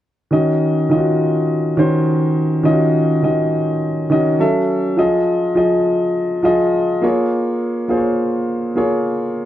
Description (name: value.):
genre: soul.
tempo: 103 BPM.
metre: 4/4.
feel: straight.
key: Eb dorian.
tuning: A4 = 444 Hz.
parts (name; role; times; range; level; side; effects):
dark concert grand piano; accompaniment; 0.3-9.5 s; Eb3 to Fb5; -14 LUFS; equal; none.
room: light reverb, small room ambience.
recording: dry, close 1970s-style studio recording.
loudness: -14 LUFS.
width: side -13 dB against mid.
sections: 0.3-9.5 A section.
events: none.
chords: 0.3 Ebm7; 4.4 Gbm7; 5.0 Fm7; 7.0 Bbm7.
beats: | 0.32 0.91 1.49 2.07 | 2.65 3.24 3.82 4.40 | 4.99 5.57 6.15 6.73 | 7.32 7.90 8.48 9.06.